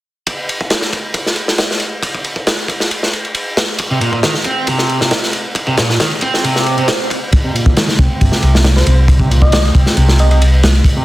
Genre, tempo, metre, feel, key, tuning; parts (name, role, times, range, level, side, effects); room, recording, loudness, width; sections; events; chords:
breakbeat, breaks; 136 BPM; 4/4; straight; C minor; A4 = 440 Hz
crunchy breakbeat drum kit; drums; 0.3-11.0 s; kick drum, ride cymbal, snare drum; -14 LUFS; equal; high-pass filter on kick, high-pass filter on cymbals, high-pass filter on snare, high-pass filter on room
crunchy overdriven guitar; riff; 3.9-11.0 s; Bb2 to C4; -18 LUFS; right 1 dB; low-pass filter, digital delay
swell; sound effects; 6.6-7.3 s; -22 LUFS; right 3 dB
hollow-body short-scale fingered electric bass; bass; 8.0-10.8 s; G1 to C2; -11 LUFS; equal
bell-like FM electric piano; melody; 8.8-10.4 s; C5 to Eb5; -21 LUFS; equal; chorus, phaser, small speaker sound, digital delay
light reverb, small room ambience; dense, heavily limited modern master; -11 LUFS; side -17 dB against mid
0.3-7.3 A section; 7.3-11.0 B section
swell 6.6-7.3